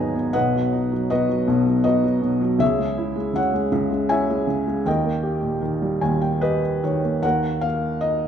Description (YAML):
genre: classical, lyrical solo piano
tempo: 78 BPM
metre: 3/4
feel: uneven beats, rubato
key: unclear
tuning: A4 = 440 Hz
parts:
  - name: felt-muted upright piano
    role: solo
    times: 0.0-8.3 s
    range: G#1 to A#5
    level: -19 LUFS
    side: equal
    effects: none
room: moderate scoring stage reverb, RT60 1.9 s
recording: minimal, uncompressed stereo recording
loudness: -19 LUFS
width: side -8 dB against mid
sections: 0.0-7.2 A section; 7.2-8.3 B section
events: felt piano fill 5.6-7.2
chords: 0.3 B; 2.6 C#m; 4.9 D#; 7.2 Ebm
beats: | 0.34 1.11 1.86 | 2.61 3.36 4.10 | 4.86 5.63 6.42 | 7.24 8.03